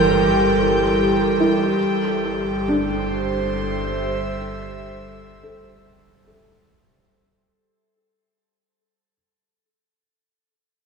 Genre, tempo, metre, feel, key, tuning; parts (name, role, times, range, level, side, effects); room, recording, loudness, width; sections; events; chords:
ambient; 71 BPM; 3/4; straight; A4 = 440 Hz
airy breathy pad; sustained chords; 0.0-6.9 s; G3 to G5; -19 LUFS; right 1 dB; chorus, shimmer reverb
felt-muted upright piano; arpeggios; 0.0-9.1 s; E3 to A4; -25 LUFS; left 1 dB; tape echo, shimmer reverb
round analog bass; bass; 0.0-6.8 s; G1; -32 LUFS; equal
wind-like tuned noise texture; texture; 0.0-6.9 s; C5 to C6; -34 LUFS; right 3 dB
wet concert hall reverb, RT60 2.3 s; -18 LUFS; side -5 dB against mid
0.0-6.8 A section
fade-out 0.1-6.8
0.0 Gm; 1.8 Am7/G